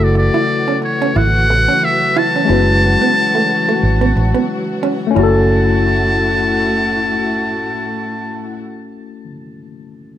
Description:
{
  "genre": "R&B, neo-soul",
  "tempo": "90 BPM",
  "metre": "4/4",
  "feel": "swing 56% on 16ths",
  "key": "F# minor",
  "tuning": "A4 = 444 Hz",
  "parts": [
    { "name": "trumpet with metal mute", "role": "melody", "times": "0.0-8.6 s", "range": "C#5 to A5", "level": "-17 LUFS", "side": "equal", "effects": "none" },
    { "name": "tine electric piano", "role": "accompaniment", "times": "0.0-10.2 s", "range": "C#3 to B4", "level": "-18 LUFS", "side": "left 4 dB", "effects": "auto-pan" },
    { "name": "warm studio string section", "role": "sustained chords", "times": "0.0-8.6 s", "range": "A2 to F#4", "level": "-24 LUFS", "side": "equal", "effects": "none" },
    { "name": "vintage muted fingered electric bass", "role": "bass", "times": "0.0-9.3 s", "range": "F#1 to A1", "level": "-16 LUFS", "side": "right 1 dB", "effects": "none" },
    { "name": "vintage hollow-body jazz guitar", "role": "second line", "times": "0.2-5.4 s", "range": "A3 to E4", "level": "-20 LUFS", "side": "right 6 dB", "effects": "none" }
  ],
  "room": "light reverb, studio reverb",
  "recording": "none",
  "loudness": "-12 LUFS",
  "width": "side -11 dB against mid",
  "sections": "0.0-5.1 A section; 5.1-7.8 B section",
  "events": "none",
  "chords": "0.0 F#m9; 5.1 F#m7",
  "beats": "0.48 1.15 1.81 | 2.48 3.15 3.81 4.48 | 5.15 5.81 6.48 7.15"
}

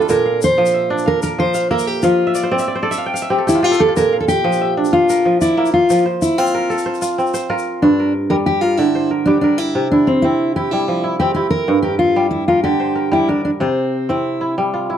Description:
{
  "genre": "west african traditional, West African string and xylophone music",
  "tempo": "124 BPM (dotted quarters)",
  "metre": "12/8",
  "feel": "straight",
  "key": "G dorian",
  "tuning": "A4 = 441 Hz",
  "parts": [
    { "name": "fingerpicked steel-string acoustic guitar", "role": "melody", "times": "0.0-14.5 s", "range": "C4 to C5", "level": "-15 LUFS", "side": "equal", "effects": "none" },
    { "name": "kora", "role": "arpeggios", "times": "0.0-15.0 s", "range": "G2 to G5", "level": "-18 LUFS", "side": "right 1 dB", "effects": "none" },
    { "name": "tube shaker", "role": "percussion", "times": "0.0-7.7 s", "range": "none", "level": "-32 LUFS", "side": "left 10 dB", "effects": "none" }
  ],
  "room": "studio reverb",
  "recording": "dry, close 1970s-style studio recording",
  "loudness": "-14 LUFS",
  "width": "side -9 dB against mid",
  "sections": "0.0-7.8 A section; 7.8-15.0 B section",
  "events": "kora fill 2.3-4.0",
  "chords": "0.1 Bb; 2.0 F; 4.0 Bb; 5.9 F; 7.8 Gm; 9.8 C; 11.7 Gm; 13.6 C",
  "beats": "| 0.09 0.57 1.06 1.54 | 2.03 2.51 3.00 3.48 | 3.97 4.45 4.93 5.41 | 5.90 6.38 6.86 7.34 | 7.83 8.31 8.79 9.27 | 9.75 10.24 10.72 11.20 | 11.68 12.17 12.65 13.13 | 13.61 14.09 14.57"
}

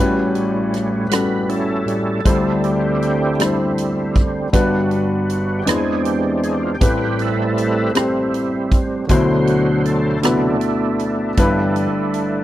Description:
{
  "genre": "slow gospel",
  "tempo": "53 BPM (dotted quarters)",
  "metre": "6/8",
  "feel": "straight",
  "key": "unclear",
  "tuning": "A4 = 441 Hz",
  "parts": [
    { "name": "warm upright piano", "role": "accompaniment", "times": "0.0-12.4 s", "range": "G1 to G5", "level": "-18 LUFS", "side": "left 2 dB", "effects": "none" },
    { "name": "overdriven tonewheel organ", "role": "sustained chords", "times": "0.0-12.4 s", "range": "G2 to C5", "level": "-20 LUFS", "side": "right 3 dB", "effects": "slow rotary speaker, chorus vibrato" },
    { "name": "swinging big-band drum kit", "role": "drums", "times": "0.3-12.3 s", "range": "hi-hat, kick drum, rim click", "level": "-19 LUFS", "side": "right 1 dB", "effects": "none" }
  ],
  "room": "light reverb",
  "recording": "dry, close 1970s-style studio recording",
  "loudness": "-16 LUFS",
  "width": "side -14 dB against mid",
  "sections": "0.0-12.4 A section",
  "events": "tonewheel organ solo 0.0-12.4",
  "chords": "0.0 A13; 2.2 D9sus4; 4.5 Gmaj7; 5.7 Eaug7; 6.8 Am9; 9.1 D13; 11.4 G6",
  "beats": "1.11 | 2.25 3.39 | 4.53 5.67 | 6.81 7.95 | 9.09 10.24 | 11.38"
}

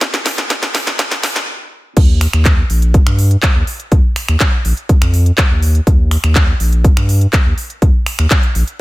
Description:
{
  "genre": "progressive house",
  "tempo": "123 BPM",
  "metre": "4/4",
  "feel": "straight",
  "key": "Eb major",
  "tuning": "A4 = 440 Hz",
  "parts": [
    { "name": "electronic kick drum", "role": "drums", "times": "0.0-8.4 s", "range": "none", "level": "-12 LUFS", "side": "equal", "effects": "high-pass filter on kick" },
    { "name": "house drum kit", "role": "drums", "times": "0.0-8.8 s", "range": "crash cymbal, finger snaps, handclaps, hi-hat, snare drum", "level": "-18 LUFS", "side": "equal", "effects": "sidechain pumping on hats, sidechain pumping on cymbals" },
    { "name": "saturated sub bass", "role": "bass", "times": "2.0-8.6 s", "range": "Bb1 to G2", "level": "-12 LUFS", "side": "equal", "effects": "sidechain pumping" }
  ],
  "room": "digital ambience",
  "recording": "high-pass filter",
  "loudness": "-11 LUFS",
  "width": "side -19 dB against mid",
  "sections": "0.0-2.0 A section; 2.0-8.8 B section",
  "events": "build-up 0.0-2.0; drum fill 0.0-1.5; filter sweep 0.0-2.0; stop 1.5-2.0; drop 2.0-8.8",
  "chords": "none",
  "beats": "| 0.02 0.50 0.99 1.48 | 1.97 2.46 2.94 3.43 | 3.92 4.41 4.89 5.38 | 5.87 6.36 6.84 7.33 | 7.82 8.31"
}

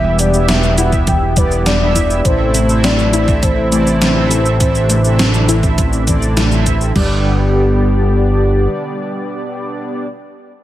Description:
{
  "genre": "synthwave",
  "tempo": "102 BPM",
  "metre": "4/4",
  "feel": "straight",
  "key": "G major",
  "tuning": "A4 = 440 Hz",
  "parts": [
    { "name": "soft octave-layered synth lead", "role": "melody", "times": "0.0-10.1 s", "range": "G4 to G5", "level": "-20 LUFS", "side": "left 1 dB", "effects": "chorus, tremolo, digital delay" },
    { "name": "brassy analog pad", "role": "sustained chords", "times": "0.0-10.1 s", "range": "C3 to G4", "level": "-20 LUFS", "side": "right 1 dB", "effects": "chorus, tremolo, sidechain pumping" },
    { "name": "warbly dusty pluck", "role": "arpeggios", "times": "0.0-7.2 s", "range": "E3 to C5", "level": "-23 LUFS", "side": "left 3 dB", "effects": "chorus, digital delay" },
    { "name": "mellow synth brass", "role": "stabs", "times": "0.0-10.1 s", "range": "B3 to E5", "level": "-22 LUFS", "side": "right 2 dB", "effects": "chorus, digital delay" },
    { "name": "fat analog bass", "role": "bass", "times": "0.0-8.7 s", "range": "E1 to A1", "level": "-15 LUFS", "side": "equal", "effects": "sidechain pumping" },
    { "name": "gated 80s digital drum machine", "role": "drums", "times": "0.2-6.9 s", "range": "cabasa, hi-hat, snare drum", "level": "-18 LUFS", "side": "equal", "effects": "gated reverb, gated reverb snare, overdrive" },
    { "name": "gated 80s digital drum machine", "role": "drums", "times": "0.9-7.1 s", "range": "crash cymbal, kick drum", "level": "-17 LUFS", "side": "equal", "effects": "overdrive" }
  ],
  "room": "light reverb",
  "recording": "none",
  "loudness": "-11 LUFS",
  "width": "side -13 dB against mid",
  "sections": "0.0-7.0 A section; 7.0-9.3 B section",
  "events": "none",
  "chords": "0.0 Em; 2.2 Am; 7.0 G",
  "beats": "0.48 1.07 1.66 | 2.25 2.84 3.43 4.01 | 4.60 5.19 5.78 6.37 | 6.96 7.54 8.13 8.72"
}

